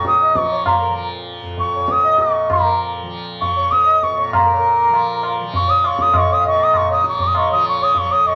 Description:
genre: indian classical, Hindustani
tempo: 99 BPM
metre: 4/4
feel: straight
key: unclear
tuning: A4 = 440 Hz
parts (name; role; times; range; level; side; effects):
- reedy bansuri; melody; 0.0-8.3 s; Bb5 to Eb6+21c; -17 LUFS; equal; none
- hand-pumped harmonium; second line; 0.0-8.3 s; Bb4 to F5; -25 LUFS; equal; none
- tanpura; drone; 0.0-8.3 s; F2 to F3; -29 LUFS; equal; none
- tabla; percussion; 0.0-8.2 s; none; -25 LUFS; equal; none
room: wet studio reverb, RT60 0.6 s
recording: none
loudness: -16 LUFS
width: mono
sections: 0.0-4.3 A section; 4.3-8.3 B section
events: none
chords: none

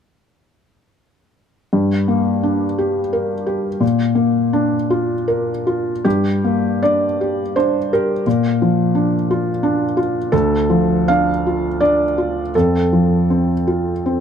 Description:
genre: neoclassical minimalist piano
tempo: 76-89 BPM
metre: 3/4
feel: rubato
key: G minor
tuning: A4 = 440 Hz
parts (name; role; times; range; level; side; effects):
- felt-muted upright piano; solo; 1.7-14.2 s; D2 to F5; -15 LUFS; equal; none
room: light reverb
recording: dark, warm production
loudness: -15 LUFS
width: side -8 dB against mid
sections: 1.7-6.1 A section; 6.1-14.2 B section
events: none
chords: 1.7 Gm; 3.8 Bb; 6.1 Gm; 8.3 Bb; 10.3 Dm; 12.5 F

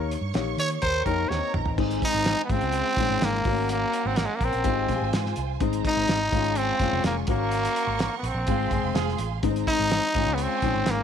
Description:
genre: uptempo 1960s-style soul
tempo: 125 BPM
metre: 4/4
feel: straight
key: Ab major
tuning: A4 = 440 Hz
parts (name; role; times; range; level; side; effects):
- growling trumpet; melody; 0.0-11.0 s; Ab3 to Db5; -26 LUFS; right 1 dB; none
- warm studio violin section; second line; 0.0-11.0 s; Db4 to Db6; -34 LUFS; right 13 dB; none
- clear upright piano; accompaniment; 0.0-11.0 s; Db3 to Db5; -29 LUFS; left 15 dB; none
- vintage muted fingered electric bass; bass; 0.0-11.0 s; F1 to Eb3; -30 LUFS; right 1 dB; none
- cloth-damped thuddy drum kit; drums; 0.1-11.0 s; crash cymbal, hi-hat, kick drum, snare drum, toms; -29 LUFS; right 1 dB; none
- clean electric guitar; riff; 0.8-5.6 s; C4 to Bb4; -34 LUFS; left 14 dB; spring reverb
- warm horn section; second line; 8.5-9.3 s; C4 to Ab4; -32 LUFS; right 16 dB; none
room: little or no reverb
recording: 1960s-style stereo with parts hard left and right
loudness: -22 LUFS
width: side -8 dB against mid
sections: 0.0-1.8 A section; 1.8-11.0 B section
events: trumpet solo 0.0-1.8; drum fill 1.3-1.8; band accent 7.5-9.4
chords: 0.0 Eb7; 1.8 Ab; 2.5 Db/Ab; 3.5 Gb/Ab; 4.7 Fm/Ab; 5.6 Ab; 6.3 Db/Ab; 7.3 Gb/Ab; 8.5 Fm; 9.4 Ab; 10.2 Db/Ab

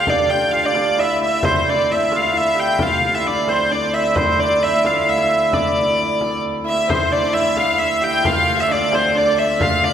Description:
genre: medieval dance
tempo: 132 BPM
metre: 3/4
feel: straight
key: D minor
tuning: A4 = 441 Hz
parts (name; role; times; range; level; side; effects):
- clear hurdy-gurdy; melody; 0.0-9.9 s; C5 to G5; -17 LUFS; equal; none
- hammered dulcimer; second line; 0.0-9.9 s; C4 to G4; -22 LUFS; right 3 dB; none
- warm viola da gamba; drone; 0.0-9.9 s; D2; -29 LUFS; left 2 dB; none
- frame drum; percussion; 0.1-9.9 s; none; -26 LUFS; left 2 dB; none
- clear fiddle; second line; 6.7-9.9 s; C5 to G5; -26 LUFS; left 4 dB; none
room: wet concert hall reverb, RT60 2.3 s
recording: recorded in a church or concert hall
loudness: -15 LUFS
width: side -9 dB against mid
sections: 0.0-6.9 A section; 6.9-9.9 A section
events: none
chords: none

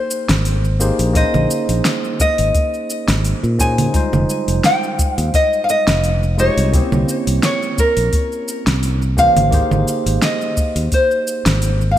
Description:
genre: sunset chillout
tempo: 86 BPM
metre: 4/4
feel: swing 54% on 16ths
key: F minor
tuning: A4 = 440 Hz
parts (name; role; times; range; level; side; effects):
- nylon-string guitar; melody; 0.0-12.0 s; Bb4 to Ab5; -19 LUFS; equal; ping-pong delay
- tine electric piano; accompaniment; 0.0-12.0 s; E3 to G5; -23 LUFS; moving between left 3 dB and right 7 dB; auto-pan, digital delay
- deep house drum kit; drums; 0.1-11.9 s; cabasa, congas, hi-hat, snare drum; -21 LUFS; right 1 dB; overdrive, studio ambience, gated reverb
- fingered electric bass; bass; 0.3-12.0 s; F1 to Bb2; -17 LUFS; equal; none
- electronic kick drum; drums; 1.2-11.1 s; none; -17 LUFS; equal; overdrive, studio ambience
room: moderate plate reverb, RT60 2.9 s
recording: bright 1980s-style digital production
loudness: -14 LUFS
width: side -12 dB against mid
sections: 0.0-12.0 A section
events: none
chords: 0.0 Abmaj9; 1.2 Bbm11; 3.9 Fm9; 6.7 C7b9; 9.5 Abmaj9

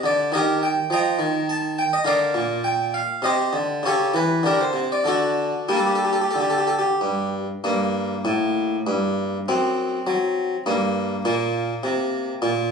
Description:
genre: classical, baroque-style suite movement for harpsichord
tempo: 90-105 BPM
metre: 3/4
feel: rubato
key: G minor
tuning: A4 = 439 Hz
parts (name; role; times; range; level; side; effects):
- harpsichord; solo; 0.0-12.7 s; F#2 to Bb5; -20 LUFS; equal; none
room: moderate small room reverb, RT60 0.6 s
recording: recorded on a phone in the room, club reverb, compression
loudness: -20 LUFS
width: side -6 dB against mid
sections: 0.0-7.6 A section; 7.6-12.7 B section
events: none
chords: 0.3 Eb; 2.1 Bb; 3.2 Cm; 3.8 A7/C#; 4.4 G5/D; 5.0 D; 5.7 Gm; 9.5 N.C.; 10.7 Gm; 11.3 Bbsus2

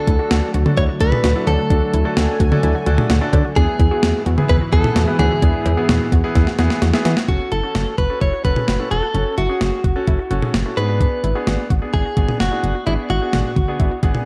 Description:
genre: synth-pop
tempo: 129 BPM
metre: 4/4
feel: straight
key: F# minor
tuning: A4 = 440 Hz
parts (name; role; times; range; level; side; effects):
- direct-recorded clean electric guitar; melody; 0.0-14.0 s; E4 to C#5; -25 LUFS; equal; slapback echo
- clear concert grand piano; accompaniment; 0.0-14.2 s; B3 to F#5; -28 LUFS; equal; none
- lush unison pad; sustained chords; 0.0-7.2 s; G#2 to G#5; -28 LUFS; equal; chorus
- unison pluck; arpeggios; 0.1-14.2 s; C#4 to G#4; -33 LUFS; equal; slapback echo
- solid FM bass; bass; 0.1-14.1 s; E1 to E3; -22 LUFS; equal; none
- gated 80s digital drum machine; drums; 0.1-14.3 s; cowbell, hi-hat, kick drum, snare drum, toms; -21 LUFS; equal; gated reverb, gated reverb snare
room: light reverb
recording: dark, warm production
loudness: -18 LUFS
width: mono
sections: 0.0-7.3 A section; 7.3-14.3 B section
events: drum fill 6.4-7.3; grand piano fill 13.8-14.3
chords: 0.0 D; 3.6 E; 7.3 F#m; 10.8 G#m7b5

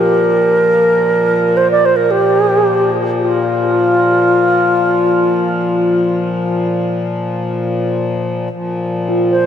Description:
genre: world meditative, free-time meditation music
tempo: free time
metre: none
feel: none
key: unclear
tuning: A4 = 440 Hz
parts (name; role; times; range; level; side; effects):
- mellow reedy alto flute; melody; 0.0-9.5 s; F4 to D5; -12 LUFS; right 1 dB; shimmer reverb, ping-pong delay
- pedal harmonium; drone; 0.0-9.5 s; Bb2 to F3; -17 LUFS; left 2 dB; none
- quartz singing bowl; texture; 9.1-9.5 s; F4; -15 LUFS; equal; none
room: wet huge ambient reverb, RT60 4.8 s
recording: none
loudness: -12 LUFS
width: side -9 dB against mid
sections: 0.0-9.5 A section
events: none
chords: none

